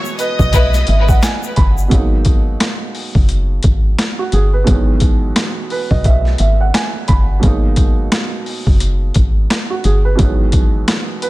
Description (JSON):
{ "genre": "hip hop, boom-bap hip-hop", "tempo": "87 BPM", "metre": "4/4", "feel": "swing 59% on 16ths", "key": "G# minor", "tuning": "A4 = 440 Hz", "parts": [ { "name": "warm studio violin section", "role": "melody", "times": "0.0-1.2 s", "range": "C#5 to D#6", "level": "-23 LUFS", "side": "left 2 dB", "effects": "high-pass filter, low-pass filter, digital delay" }, { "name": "dark upright piano", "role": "accompaniment", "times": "0.0-11.3 s", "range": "B2 to B5", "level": "-20 LUFS", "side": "right 4 dB", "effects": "cassette tape, high-pass filter, low-pass filter" }, { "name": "tube shaker", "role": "percussion", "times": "0.1-1.9 s", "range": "none", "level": "-33 LUFS", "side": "left 5 dB", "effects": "none" }, { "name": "boom bap sampler-style drum kit", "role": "drums", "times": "0.2-11.3 s", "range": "hi-hat, kick drum, snare drum", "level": "-15 LUFS", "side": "equal", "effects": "overdrive, vintage 12-bit sampler grit" }, { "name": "woody FM bass", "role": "bass", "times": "0.4-10.8 s", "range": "F#1 to B1", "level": "-15 LUFS", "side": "equal", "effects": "none" }, { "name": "warm studio string section", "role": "stabs", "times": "0.5-0.8 s", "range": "G#3 to B4", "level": "-23 LUFS", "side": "left 4 dB", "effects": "high-pass filter, low-pass filter, digital delay" } ], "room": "studio reverb", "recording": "none", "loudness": "-12 LUFS", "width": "side -18 dB against mid", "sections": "0.0-1.9 A section; 1.9-11.3 B section", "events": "none", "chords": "0.0 Emaj7; 1.9 G#m7; 4.7 Emaj7/G#; 7.4 G#m7; 10.2 Emaj7/G#", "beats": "0.54 1.23 | 1.92 2.60 3.29 3.98 | 4.67 5.36 6.05 6.74 | 7.43 8.12 8.81 9.50 | 10.19 10.88" }